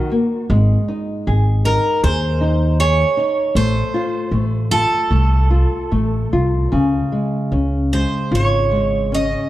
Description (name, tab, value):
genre	fado-style ballad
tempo	77 BPM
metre	4/4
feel	rubato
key	unclear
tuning	A4 = 440 Hz
part	picked twelve-string acoustic guitar	melody	0.0-9.5 s	A4 to Eb5	-20 LUFS	right 2 dB	analog delay
part	nylon-string guitar	accompaniment	0.0-9.5 s	Db3 to Ab4	-20 LUFS	left 1 dB	none
part	upright bass	bass	0.5-9.3 s	Ab1 to Eb2	-17 LUFS	equal	none
room	moderate recital hall reverb, RT60 1.6 s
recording	dark, warm production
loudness	-15 LUFS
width	side -15 dB against mid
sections	0.0-9.5 A section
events	none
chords	0.5 Ab; 3.6 F/A; 6.7 Db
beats	| 0.48 1.26 2.02 2.79 | 3.55 4.32 5.10 5.91 | 6.72 7.52 8.32 9.11